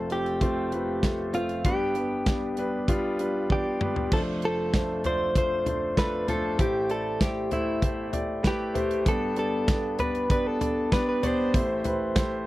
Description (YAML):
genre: piano-driven pop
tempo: 97 BPM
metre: 4/4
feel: straight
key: unclear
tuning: A4 = 440 Hz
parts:
  - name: direct-recorded clean electric guitar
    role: melody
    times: 0.0-12.5 s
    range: E4 to C5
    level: -29 LUFS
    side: equal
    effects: slapback echo
  - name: clear concert grand piano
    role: accompaniment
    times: 0.0-12.5 s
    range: F1 to D5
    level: -28 LUFS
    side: equal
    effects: none
  - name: modern studio drum kit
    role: drums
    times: 0.1-12.3 s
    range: crash cymbal, hi-hat, kick drum, snare drum, toms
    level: -27 LUFS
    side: equal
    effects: none
room: light reverb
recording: dry, close 1970s-style studio recording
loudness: -24 LUFS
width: side -17 dB against mid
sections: 0.0-4.1 A section; 4.1-12.5 B section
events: drum fill 3.5-4.1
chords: 0.0 F; 1.6 G; 4.1 F6; 6.6 Am7; 9.1 G; 11.5 Am7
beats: 0.41 1.03 | 1.65 2.27 2.88 3.50 | 4.12 4.74 5.36 5.97 | 6.59 7.21 7.83 8.45 | 9.07 9.68 10.30 10.92 | 11.54 12.16